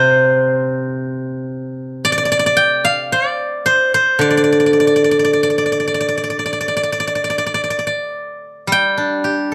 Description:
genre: chinese traditional, Chinese solo plucked strings.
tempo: 52-56 BPM.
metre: 4/4.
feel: rubato.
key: D yu mode.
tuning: A4 = 440 Hz.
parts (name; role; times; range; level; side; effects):
steel-string zither; solo; 0.0-9.5 s; C3 to G5; -16 LUFS; equal; none.
room: light reverb.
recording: none.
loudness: -16 LUFS.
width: mono.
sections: 0.0-9.5 A section.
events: none.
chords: none.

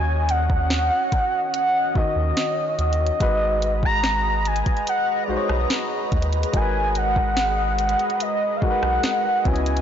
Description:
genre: contemporary R&B.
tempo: 72 BPM.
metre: 4/4.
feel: straight.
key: G# minor.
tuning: A4 = 439 Hz.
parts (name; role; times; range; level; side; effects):
warm velvety synth lead; melody; 0.0-9.8 s; D5 to A#5; -22 LUFS; equal; chorus.
warm grand piano; accompaniment; 0.0-9.8 s; C#3 to D#5; -29 LUFS; left 4 dB; none.
lush unison pad; sustained chords; 0.0-9.8 s; C#3 to A#5; -29 LUFS; right 1 dB; chorus, phaser.
round analog bass; bass; 0.0-9.8 s; G#1 to D#2; -24 LUFS; equal; none.
smooth R&B drum kit; drums; 0.3-9.8 s; hi-hat, kick drum, rim click, snare drum; -25 LUFS; equal; none.
room: little or no reverb.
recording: blown-out, overdriven recording, overdrive, nothing above 7.5 kHz.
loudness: -19 LUFS.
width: side -9 dB against mid.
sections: 0.0-9.8 A section.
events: none.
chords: 0.0 D#m7; 3.2 G#m7.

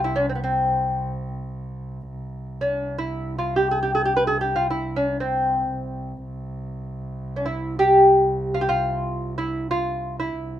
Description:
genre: Persian modal ensemble.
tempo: free time.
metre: none.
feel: none.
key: C dastgah chahargah.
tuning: A4 = 439 Hz.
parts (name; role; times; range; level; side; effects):
lute; melody; 0.0-10.6 s; B3 to B4; -20 LUFS; equal; none.
muted cello; drone; 0.0-10.6 s; C2; -30 LUFS; right 1 dB; none.
room: light reverb.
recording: minimal, uncompressed stereo recording.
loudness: -20 LUFS.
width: side -11 dB against mid.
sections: 0.0-2.1 A section; 2.1-10.6 A section.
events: none.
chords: none.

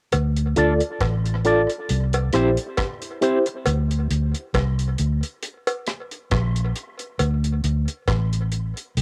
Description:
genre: dub reggae.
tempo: 68 BPM.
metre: 4/4.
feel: swing 55% on 16ths.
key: D minor.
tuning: A4 = 440 Hz.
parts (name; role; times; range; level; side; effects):
vintage muted fingered electric bass; bass; 0.1-9.0 s; A1 to D2; -24 LUFS; equal; none.
deep reggae drum kit; drums; 0.1-9.0 s; hi-hat, kick drum, rim click; -31 LUFS; equal; cassette tape.
cowbell; percussion; 0.1-8.3 s; none; -30 LUFS; equal; tape echo.
electric guitar with an envelope filter; accompaniment; 0.6-3.5 s; C4 to D5; -29 LUFS; equal; harmonic tremolo, tape echo.
mellow reed electric piano; stabs; 0.6-3.5 s; E4 to D5; -25 LUFS; equal; fast tremolo, tape echo.
room: small room ambience.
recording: home recording on cassette.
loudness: -23 LUFS.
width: mono.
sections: 0.1-9.0 A section.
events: break 3.7-9.0.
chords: 0.1 Dm; 1.9 C; 3.7 Csus2; 5.4 N.C.; 7.2 D5.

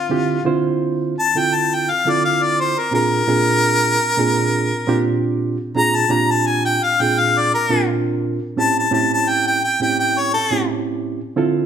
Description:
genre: blues.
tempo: 85 BPM.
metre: 4/4.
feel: swing 54% on 16ths.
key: unclear.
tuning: A4 = 441 Hz.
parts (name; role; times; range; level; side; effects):
clear harmonica; melody; 0.0-10.7 s; F4 to Bb5; -17 LUFS; left 2 dB; none.
reed electric piano; accompaniment; 0.1-11.7 s; A2 to C5; -19 LUFS; right 3 dB; none.
room: wet large studio reverb, RT60 1.4 s.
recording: band playing live in one room.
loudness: -16 LUFS.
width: side -8 dB against mid.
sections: 0.0-11.7 A section.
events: harmonica solo 0.0-11.7.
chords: 0.0 Dm7; 2.9 Bb7; 8.6 A7#9.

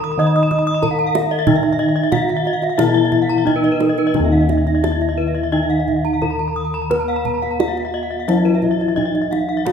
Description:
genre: Balinese gamelan.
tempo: 88 BPM.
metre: 4/4.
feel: uneven beats.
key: Eb pelog.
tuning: A4 = 440 Hz.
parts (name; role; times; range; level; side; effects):
gamelan-type bronze metallophone; melody; 0.0-9.7 s; Eb4 to Eb5; -19 LUFS; left 1 dB; none.
gamelan-type bronze metallophone; accompaniment; 0.0-9.7 s; Eb3 to Eb4; -27 LUFS; left 1 dB; none.
gamelan-type bronze metallophone; arpeggios; 0.0-9.7 s; Cb5-40c to Eb6; -24 LUFS; left 4 dB; none.
gamelan-type bronze metallophone; arpeggios; 0.0-9.5 s; Bb4-45c to Eb6; -25 LUFS; right 5 dB; none.
gamelan-type bossed gongs; bass; 0.0-9.7 s; Eb2 to Cb5-40c; -21 LUFS; left 1 dB; none.
kendang; percussion; 0.5-9.7 s; none; -26 LUFS; right 6 dB; none.
room: moderate recital hall reverb, RT60 1.7 s.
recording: minimal, uncompressed stereo recording.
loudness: -15 LUFS.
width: side -7 dB against mid.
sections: 0.0-4.1 A section; 4.1-9.7 B section.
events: none.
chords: none.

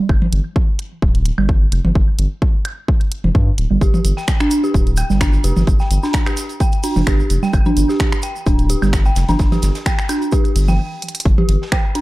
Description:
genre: minimal techno.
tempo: 129 BPM.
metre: 4/4.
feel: swing 54% on 16ths.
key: unclear.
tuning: A4 = 440 Hz.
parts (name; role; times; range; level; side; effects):
saturated sub bass; bass; 0.1-11.6 s; D1 to G2; -17 LUFS; equal; sidechain pumping.
electronic kick drum; drums; 0.1-11.8 s; none; -16 LUFS; equal; overdrive.
booming analog drum machine; percussion; 0.1-11.8 s; congas, rim click, toms, woodblock; -22 LUFS; right 2 dB; tape echo.
house drum kit; drums; 0.3-12.0 s; finger snaps, hi-hat; -25 LUFS; right 1 dB; overdrive.
dark detuned synth bell; riff; 3.8-12.0 s; D4 to G5; -21 LUFS; equal; chorus, phaser, vintage 12-bit sampler grit, sidechain pumping, digital delay.
deep reggae drum kit; drums; 3.8-12.0 s; hi-hat, snare drum; -37 LUFS; right 3 dB; high-pass filter on hats, high-pass filter on snare, high-pass filter on room.
cabasa; percussion; 3.8-10.8 s; none; -33 LUFS; right 3 dB; none.
room: little or no reverb.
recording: dark, warm production.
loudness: -14 LUFS.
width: side -18 dB against mid.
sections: 0.0-11.3 A section.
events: stop 10.8-11.3; drum fill 11.0.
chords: 0.0 G5.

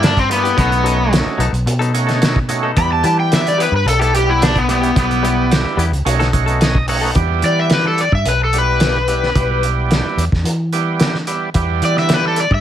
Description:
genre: straight-eighth soul blues.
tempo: 109 BPM.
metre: 4/4.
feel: straight.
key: E dorian.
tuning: A4 = 440 Hz.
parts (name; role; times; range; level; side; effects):
overdriven slide guitar; melody; 0.0-12.6 s; B3 to B5; -16 LUFS; left 2 dB; none.
overdriven tonewheel organ; accompaniment; 0.0-12.4 s; G3 to F#5; -21 LUFS; right 6 dB; slow rotary speaker.
direct-recorded clean electric guitar; stabs; 0.0-7.2 s; F#3 to A4; -24 LUFS; left 6 dB; none.
vintage muted fingered electric bass; bass; 0.0-12.6 s; B1 to E3; -18 LUFS; equal; none.
cloth-damped thuddy drum kit; drums; 0.0-12.6 s; hi-hat, kick drum, snare drum; -18 LUFS; equal; none.
room: light reverb.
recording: none.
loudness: -13 LUFS.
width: side -10 dB against mid.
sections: 0.0-7.2 A section; 7.2-12.6 B section.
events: electric slide guitar solo 0.0-7.2; tonewheel organ fill 6.3-7.2.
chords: 0.0 C7; 0.6 B7; 2.8 Em; 6.1 B7; 7.2 Em.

